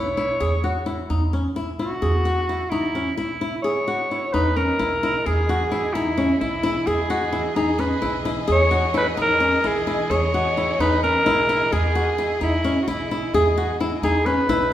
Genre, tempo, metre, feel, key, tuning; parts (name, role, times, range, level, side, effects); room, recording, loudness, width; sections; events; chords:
contemporary instrumental, chamber music in an uneven meter; 260 BPM (eighths); 7/8; straight; E lydian; A4 = 440 Hz
growling alto saxophone; melody; 0.0-14.7 s; E4 to C#5; -22 LUFS; equal
flamenco guitar; arpeggios; 0.0-14.6 s; C#4 to G#4; -24 LUFS; left 1 dB
upright bass; bass; 0.0-14.7 s; B1 to E2; -26 LUFS; right 1 dB
warm studio string section; sustained chords; 4.3-14.7 s; E3 to D#5; -30 LUFS; left 1 dB
wet recital hall reverb, RT60 1.5 s; recorded in a church or concert hall; -19 LUFS; side -12 dB against mid
0.0-4.3 A section; 4.3-14.7 B section
0.0 E